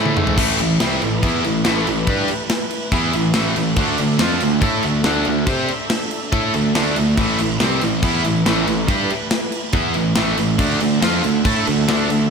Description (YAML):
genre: heavy metal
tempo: 141 BPM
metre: 4/4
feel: straight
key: A minor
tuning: A4 = 440 Hz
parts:
  - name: warm studio string section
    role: sustained chords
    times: 0.0-12.3 s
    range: A3 to E5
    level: -30 LUFS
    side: equal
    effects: none
  - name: high-gain distorted guitar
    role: riff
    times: 0.0-12.3 s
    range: A2 to C5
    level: -22 LUFS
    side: left 11 dB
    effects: distortion
  - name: tight distorted guitar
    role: riff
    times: 0.0-12.3 s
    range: A2 to C5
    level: -21 LUFS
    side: right 9 dB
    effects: distortion
  - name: overdriven picked electric bass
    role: bass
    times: 0.0-12.3 s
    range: A1 to C3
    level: -23 LUFS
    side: equal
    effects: none
  - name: tight metal drum kit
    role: drums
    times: 0.1-12.2 s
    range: crash cymbal, kick drum, snare drum, toms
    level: -21 LUFS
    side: equal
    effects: none
room: moderate lush hall reverb, RT60 1.9 s, small room ambience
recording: big arena sound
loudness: -16 LUFS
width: side -5 dB against mid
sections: 0.4-12.3 A section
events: drum fill 0.0-0.4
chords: 0.4 Am; 3.8 D5; 7.2 Am; 10.6 D5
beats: | 0.38 0.80 1.23 1.65 | 2.08 2.50 2.93 3.35 | 3.78 4.20 4.63 5.05 | 5.48 5.90 6.33 6.75 | 7.18 7.61 8.03 8.46 | 8.89 9.31 9.74 10.17 | 10.59 11.02 11.45 11.88